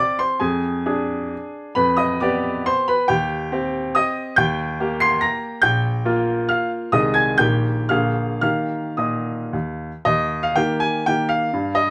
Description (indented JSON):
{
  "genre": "classical, romantic triple-time dance for piano with dotted rhythms",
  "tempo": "101-149 BPM",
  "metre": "3/4",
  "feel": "rubato",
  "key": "C minor, Eb major from 4.4 s",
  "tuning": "A4 = 440 Hz",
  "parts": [
    { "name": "clear baby grand piano", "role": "solo", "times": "0.0-11.9 s", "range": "Bb1 to C7", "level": "-21 LUFS", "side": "equal", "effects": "none" }
  ],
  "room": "light reverb",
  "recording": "none",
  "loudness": "-21 LUFS",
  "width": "mono",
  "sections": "0.0-10.1 A section; 10.1-11.9 B section",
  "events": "none",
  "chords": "0.4 Ddim/F; 1.8 G7/F; 3.1 Cm/Eb; 4.4 Eb; 5.6 Bb5; 6.9 Ab/C; 7.4 Eb/Bb; 7.9 Bb7; 8.4 Eb"
}